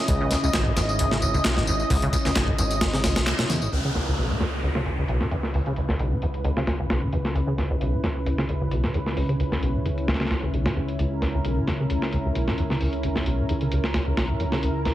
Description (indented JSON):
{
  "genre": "breakbeat, breaks",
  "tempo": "132 BPM",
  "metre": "4/4",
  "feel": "swing 54% on 16ths",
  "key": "C# dorian",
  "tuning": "A4 = 440 Hz",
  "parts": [
    { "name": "lush unison pad", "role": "sustained chords", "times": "0.0-14.9 s", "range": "C#3 to D#5", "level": "-29 LUFS", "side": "equal", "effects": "chorus, vintage 12-bit sampler grit, sidechain pumping" },
    { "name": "deep acid bass", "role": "riff", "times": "0.1-14.9 s", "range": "B1 to C#3", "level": "-26 LUFS", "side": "equal", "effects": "ensemble chorus, cassette tape" },
    { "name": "fat analog bass", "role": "bass", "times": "0.1-14.9 s", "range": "G#1 to E2", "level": "-29 LUFS", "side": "equal", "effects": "none" },
    { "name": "breakbeat sampler-style drum kit", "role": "drums", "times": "0.1-14.9 s", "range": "hi-hat, kick drum, snare drum", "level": "-27 LUFS", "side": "equal", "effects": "low-pass filter on hats, studio reverb, low-pass filter on snare, low-pass filter on kick" },
    { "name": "electronic tambourine and handclaps", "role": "drums", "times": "0.1-3.7 s", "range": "none", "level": "-31 LUFS", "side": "left 1 dB", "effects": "studio reverb" },
    { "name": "downlifter", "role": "sound effects", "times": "3.7-7.4 s", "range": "none", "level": "-32 LUFS", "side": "left 1 dB", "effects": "none" }
  ],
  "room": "light reverb, digital ambience",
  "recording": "heavily compressed radio sound, multiband compression",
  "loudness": "-22 LUFS",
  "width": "side -14 dB against mid",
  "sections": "0.0-3.7 A section; 3.7-14.9 B section",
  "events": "band accent 3.3; filter sweep on acid bass 3.7-14.9",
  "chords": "0.0 C#m7",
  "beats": "| 0.09 0.54 0.99 1.45 | 1.91 2.36 2.81 3.27 | 3.72 4.18 4.63 5.09 | 5.54 6.00 6.45 6.91 | 7.36 7.81 8.27 8.72 | 9.18 9.63 10.09 10.54 | 10.99 11.45 11.90 12.36 | 12.81 13.27 13.72 14.18 | 14.63"
}